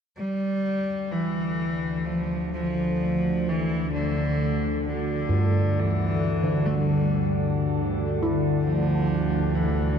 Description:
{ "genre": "ambient", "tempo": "64 BPM", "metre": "4/4", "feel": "straight", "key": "D minor", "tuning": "A4 = 441 Hz", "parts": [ { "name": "rich cello", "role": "melody", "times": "0.2-10.0 s", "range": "D3 to A3", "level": "-26 LUFS", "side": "equal", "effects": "diffuse ambient delay" }, { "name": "organ-like drone", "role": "drone", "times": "1.3-10.0 s", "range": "D2 to D3", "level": "-26 LUFS", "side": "equal", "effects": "ensemble chorus, built-in reverb, phaser" }, { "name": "metallic inharmonic drone", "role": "texture", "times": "3.4-10.0 s", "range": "G3 to G4", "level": "-43 LUFS", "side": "left 2 dB", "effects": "none" }, { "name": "gamelan-type bossed gongs", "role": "arpeggios", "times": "5.3-10.0 s", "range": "G2 to E4", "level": "-26 LUFS", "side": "right 1 dB", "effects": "diffuse ambient delay" } ], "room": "wet cathedral reverb, RT60 5.0 s", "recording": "dark, warm production", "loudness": "-22 LUFS", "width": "side -7 dB against mid", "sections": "0.2-10.0 A section", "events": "filter sweep on synth drone 0.2-10.0", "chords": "0.2 Dsus2" }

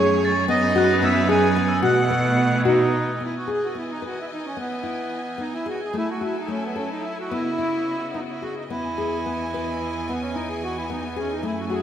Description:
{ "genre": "contemporary instrumental, chamber music in an uneven meter", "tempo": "220 BPM (eighths)", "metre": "5/8", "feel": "straight", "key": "unclear", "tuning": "A4 = 440 Hz", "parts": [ { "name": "accordion", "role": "melody", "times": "0.0-11.8 s", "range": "B3 to G#5", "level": "-26 LUFS", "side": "right 2 dB", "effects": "none" }, { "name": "bright studio string section", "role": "sustained chords", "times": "0.0-11.8 s", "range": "C#3 to G#5", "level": "-31 LUFS", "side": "left 1 dB", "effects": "none" }, { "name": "nylon-string guitar", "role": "arpeggios", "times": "0.0-11.8 s", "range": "A3 to B4", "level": "-25 LUFS", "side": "left 2 dB", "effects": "none" }, { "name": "clear cello", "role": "bass", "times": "0.0-3.2, 8.7-11.8 s", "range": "E2 to B2", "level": "-25 LUFS", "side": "right 4 dB", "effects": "none" }, { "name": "crotales", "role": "texture", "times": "0.2-3.5 s", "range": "D#6 to A6", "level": "-29 LUFS", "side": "left 3 dB", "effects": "none" } ], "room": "wet scoring stage reverb, RT60 1.7 s", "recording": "none", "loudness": "-21 LUFS", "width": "side -9 dB against mid", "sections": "0.0-3.2 A section; 3.2-11.8 B section", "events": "none", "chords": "0.5 Emaj9/F# (rootless); 1.8 B7sus4; 3.2 Emaj7; 5.9 F#m9; 7.3 C#m11; 8.7 Emaj7" }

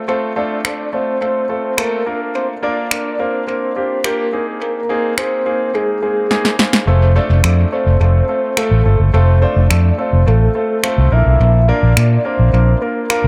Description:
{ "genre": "dance-pop", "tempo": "106 BPM", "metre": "4/4", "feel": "straight", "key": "F major", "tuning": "A4 = 442 Hz", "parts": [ { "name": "warm concert grand piano", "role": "accompaniment", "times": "0.0-13.3 s", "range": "A3 to C5", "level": "-23 LUFS", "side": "equal", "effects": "dub echo" }, { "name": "soft octave-layered synth lead", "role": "melody", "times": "0.1-13.3 s", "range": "Ab4 to E5", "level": "-22 LUFS", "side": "equal", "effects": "chorus, tremolo, dub echo" }, { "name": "electronic finger snaps and snare drum", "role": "drums", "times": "0.6-13.2 s", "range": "none", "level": "-22 LUFS", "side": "equal", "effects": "dub echo" }, { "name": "vintage muted fingered electric bass", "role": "bass", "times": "6.9-13.3 s", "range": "F1 to Bb2", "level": "-13 LUFS", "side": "equal", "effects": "none" } ], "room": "moderate spring reverb, RT60 1.4 s", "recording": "echo-heavy mix", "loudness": "-15 LUFS", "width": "mono", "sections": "0.0-13.3 A section", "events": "drum fill 6.3-6.9", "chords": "0.0 F; 2.1 Bb; 4.3 Abadd9; 6.9 F; 11.1 Bb" }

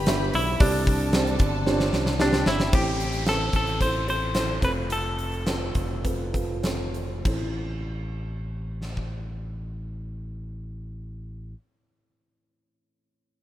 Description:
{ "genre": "piano-driven pop", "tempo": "96-113 BPM", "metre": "4/4", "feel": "straight", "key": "A minor", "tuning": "A4 = 440 Hz", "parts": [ { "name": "direct-recorded clean electric guitar", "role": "melody", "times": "0.0-6.6 s", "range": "D4 to C5", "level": "-28 LUFS", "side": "left 1 dB", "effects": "none" }, { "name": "rich studio violin section", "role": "second line", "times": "0.0-2.7 s", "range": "G4 to B5", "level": "-34 LUFS", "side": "left 2 dB", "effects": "none" }, { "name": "dark upright piano", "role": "accompaniment", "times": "0.0-13.4 s", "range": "A1 to E5", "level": "-29 LUFS", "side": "right 3 dB", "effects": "none" }, { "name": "modern bright fingered electric bass", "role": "bass", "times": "0.0-11.5 s", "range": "F1 to C2", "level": "-30 LUFS", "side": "equal", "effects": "none" }, { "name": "huge arena drum kit", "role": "drums", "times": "0.1-9.1 s", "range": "crash cymbal, hi-hat, kick drum, snare drum", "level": "-26 LUFS", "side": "equal", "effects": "none" }, { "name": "downlifter", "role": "sound effects", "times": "2.7-7.3 s", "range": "none", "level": "-37 LUFS", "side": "equal", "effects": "none" } ], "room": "light reverb, small room ambience", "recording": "rough home demo mix", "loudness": "-23 LUFS", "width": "side -13 dB against mid", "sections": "0.0-2.7 A section; 2.7-7.3 B section; 7.3-12.2 C section", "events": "drum fill 1.7-2.7; slowing down 2.7-7.3", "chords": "0.0 G; 0.6 Csus2; 2.7 Am; 4.6 F; 7.3 Am" }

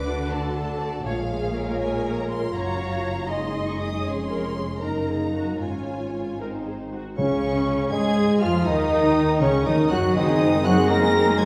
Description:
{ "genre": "classical, dramatic, fast romantic movement for symphony orchestra", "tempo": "80 BPM (dotted quarters)", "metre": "6/8", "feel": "straight", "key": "Db major", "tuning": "A4 = 439 Hz", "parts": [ { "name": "warm symphonic violin section", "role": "melody", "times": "0.0-11.4 s", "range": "F5 to Bb6", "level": "-36 LUFS", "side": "equal", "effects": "none" }, { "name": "warm symphonic violin section", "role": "second line", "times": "0.0-11.4 s", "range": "Db4 to F5", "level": "-35 LUFS", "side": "equal", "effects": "none" }, { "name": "rich symphonic viola section", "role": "accompaniment", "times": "0.0-11.4 s", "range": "Gb3 to Eb5", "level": "-32 LUFS", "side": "equal", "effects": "none" }, { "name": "mellow French horn section", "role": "sustained chords", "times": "0.0-11.4 s", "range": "Db3 to Ab4", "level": "-30 LUFS", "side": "equal", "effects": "none" }, { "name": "rich studio cello section", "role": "bass", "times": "0.0-11.4 s", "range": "F2 to Bb3", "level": "-30 LUFS", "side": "equal", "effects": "none" }, { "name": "rich studio double bass section", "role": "bass", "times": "0.0-11.4 s", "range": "F1 to Ab2", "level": "-33 LUFS", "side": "equal", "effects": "none" }, { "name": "concert flute", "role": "second line", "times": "7.2-11.4 s", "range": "Db5 to Bb5", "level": "-32 LUFS", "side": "equal", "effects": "none" }, { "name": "warm clarinet", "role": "second line", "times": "7.2-11.4 s", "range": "C4 to Ab4", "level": "-33 LUFS", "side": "equal", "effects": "none" }, { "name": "mellow bassoon", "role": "accompaniment", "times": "7.2-11.4 s", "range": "Db3 to Ab3", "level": "-31 LUFS", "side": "equal", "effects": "none" }, { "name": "warm trombone section", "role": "sustained chords", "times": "7.2-11.4 s", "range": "Db3 to Ab3", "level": "-32 LUFS", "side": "equal", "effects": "none" }, { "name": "warm trumpet section", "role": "stabs", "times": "7.2-11.4 s", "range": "Db4 to Bb4", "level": "-30 LUFS", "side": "equal", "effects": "none" }, { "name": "timpani", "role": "percussion", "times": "7.2-7.9 s", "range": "Db3", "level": "-34 LUFS", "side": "equal", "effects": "none" } ], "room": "wet scoring stage reverb, RT60 1.5 s", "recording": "heard from further back in the room", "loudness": "-23 LUFS", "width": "mono", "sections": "0.0-7.2 A section; 7.2-11.4 B section", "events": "none", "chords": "0.0 D; 1.1 Bbm7; 2.5 Gbmaj7; 3.3 Ab7/Gb; 4.1 Db/F; 4.8 Ebm/Gb; 5.6 Db/Ab; 6.4 Ab; 7.2 Db; 8.7 Ebm; 10.2 Ab7/Gb" }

